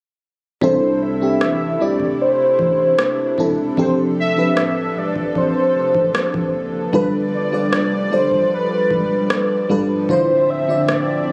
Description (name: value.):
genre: contemporary R&B.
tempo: 76 BPM.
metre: 4/4.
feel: straight.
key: C major.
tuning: A4 = 442 Hz.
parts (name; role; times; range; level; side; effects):
warm velvety synth lead; melody; 0.6-11.3 s; B4 to E5; -21 LUFS; equal; chorus, delay.
FM electric piano with soft pad layer; accompaniment; 0.6-11.3 s; C3 to D5; -22 LUFS; equal; chorus.
lush unison pad; sustained chords; 0.6-11.3 s; C3 to E5; -29 LUFS; equal; chorus.
saturated sub bass; bass; 0.6-11.3 s; Db1 to C2; -32 LUFS; equal; none.
booming analog drum machine; drums; 0.6-11.1 s; kick drum, rim click; -25 LUFS; equal; none.
room: light reverb.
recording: recorded on a phone in the room, club reverb, compression.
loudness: -18 LUFS.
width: mono.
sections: 0.6-11.3 A section.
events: none.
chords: 0.6 C69; 3.8 F6; 6.9 G7; 10.1 Dm9.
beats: | 0.62 1.41 2.19 2.98 | 3.77 4.56 5.35 6.14 | 6.93 7.72 8.51 9.30 | 10.09 10.88.